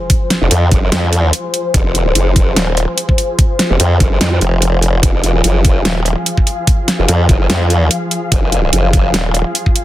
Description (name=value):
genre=heavy wobble dubstep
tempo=146 BPM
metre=4/4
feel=swing 55% on 16ths, half-time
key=F phrygian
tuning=A4 = 438 Hz
part: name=rich studio string section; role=sustained chords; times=0.0-9.8 s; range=F3 to F5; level=-21 LUFS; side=left 2 dB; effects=sidechain pumping, low-pass filter
part: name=dubstep drum kit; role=drums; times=0.1-9.8 s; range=hi-hat, snare drum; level=-17 LUFS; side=equal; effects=none
part: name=electronic kick drum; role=drums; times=0.1-9.7 s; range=none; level=-12 LUFS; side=equal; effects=none
part: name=formant-sweep wobble bass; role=bass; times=0.4-9.1 s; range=F1 to F2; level=-14 LUFS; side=equal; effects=chorus, overdrive
part: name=formant-sweep wobble bass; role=bass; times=0.5-9.4 s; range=Eb1 to F2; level=-12 LUFS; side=equal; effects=chorus, overdrive
room=digital ambience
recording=dense, heavily limited modern master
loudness=-11 LUFS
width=side -14 dB against mid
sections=0.0-9.8 A section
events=none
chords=0.0 Fm